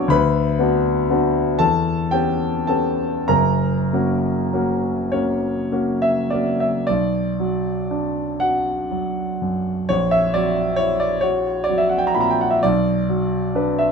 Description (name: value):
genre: classical, romantic nocturne for solo piano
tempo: 32-46 BPM (dotted quarters)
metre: 6/8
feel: rubato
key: unclear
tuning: A4 = 440 Hz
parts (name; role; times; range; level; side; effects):
- warm grand piano; solo; 0.0-13.9 s; F#1 to D6; -17 LUFS; equal; none
room: light reverb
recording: minimal, uncompressed stereo recording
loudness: -18 LUFS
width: side -5 dB against mid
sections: 0.0-6.9 A section; 6.9-13.9 B section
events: none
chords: 0.1 Bm/D; 1.6 C#m7b5/E; 3.3 F#; 6.9 Bm; 9.9 F#7/A#; 12.6 Bm